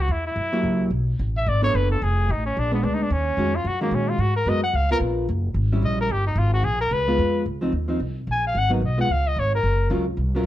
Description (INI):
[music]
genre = jazz, small-group swing and bop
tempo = 220 BPM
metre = 4/4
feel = swing 59% on 8ths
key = F# major, Db major from 7.5 s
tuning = A4 = 439 Hz
[part]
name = clear trumpet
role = melody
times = 0.0-9.9 s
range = A#3 to Ab5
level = -24 LUFS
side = left 1 dB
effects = none
[part]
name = upright bass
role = bass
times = 0.0-10.5 s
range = F1 to A#2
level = -23 LUFS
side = equal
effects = none
[part]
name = vintage hollow-body jazz guitar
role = accompaniment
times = 0.5-10.5 s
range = D#3 to C#5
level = -25 LUFS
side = equal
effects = none
[sound]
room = light reverb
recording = dark, warm production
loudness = -20 LUFS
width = side -13 dB against mid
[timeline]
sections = 0.0-7.5 A section; 7.5-10.5 A section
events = trumpet solo 0.0-10.5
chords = 0.4 F#7b9; 0.9 Bm9; 2.0 F7#9; 2.6 A#7b9; 3.1 D#m11; 4.2 G#m9; 4.7 C#6; 5.3 F#sus2; 5.8 Gdim7; 6.4 G#sus2; 6.9 C#7; 7.5 Dbmaj9; 8.5 Abm7; 9.1 Db5; 9.6 Gbmaj7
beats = 0.11 0.38 0.65 | 0.92 1.20 1.47 1.74 | 2.01 2.28 2.56 2.83 | 3.10 3.37 3.65 3.92 | 4.19 4.46 4.74 5.01 | 5.28 5.55 5.82 6.09 | 6.37 6.64 6.91 7.18 | 7.46 7.73 8.00 8.27 | 8.54 8.82 9.09 9.36 | 9.63 9.91 10.18 10.45